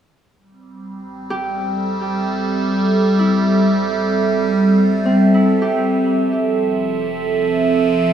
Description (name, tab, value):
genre	ambient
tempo	64 BPM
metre	3/4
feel	straight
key	A minor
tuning	A4 = 437 Hz
part	evolving wavetable pad	sustained chords	0.9-8.1 s	F3 to E5	-15 LUFS	right 1 dB	phaser, built-in reverb
part	warm sub bass	bass	0.4-8.1 s	F1 to A1	-44 LUFS	equal	none
part	Celtic harp	arpeggios	1.3-8.1 s	C4 to G4	-25 LUFS	right 1 dB	diffuse ambient delay
room	wet plate reverb, RT60 3.4 s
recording	dreamy mix soaked in reverb, small room ambience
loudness	-14 LUFS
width	side -9 dB against mid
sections	0.4-8.1 A section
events	fade-in on sub bass 0.4-8.1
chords	0.4 Am7; 6.0 Fmaj7